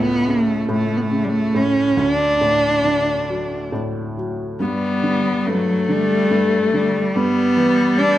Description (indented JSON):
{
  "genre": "celtic folk, Celtic slow air",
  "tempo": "47 BPM (dotted quarters)",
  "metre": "6/8",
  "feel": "rubato",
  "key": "G major",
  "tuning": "A4 = 439 Hz",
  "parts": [
    { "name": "rich cello", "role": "melody", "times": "0.0-8.2 s", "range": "F#3 to D4", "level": "-18 LUFS", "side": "right 1 dB", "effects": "none" },
    { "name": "felt-muted upright piano", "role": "accompaniment", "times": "0.0-8.2 s", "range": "C#2 to G3", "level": "-24 LUFS", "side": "equal", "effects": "none" },
    { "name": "clear viola", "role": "second line", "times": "4.6-8.2 s", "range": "G3 to B3", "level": "-20 LUFS", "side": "left 4 dB", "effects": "none" }
  ],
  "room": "light reverb",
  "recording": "dark, warm production",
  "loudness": "-16 LUFS",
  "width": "side -13 dB against mid",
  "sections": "0.0-8.2 A section",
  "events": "none",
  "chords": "0.0 A/C#; 2.0 D; 4.6 G; 7.1 Em/G",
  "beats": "0.69 | 1.98 3.29 | 4.60 5.88 | 7.14"
}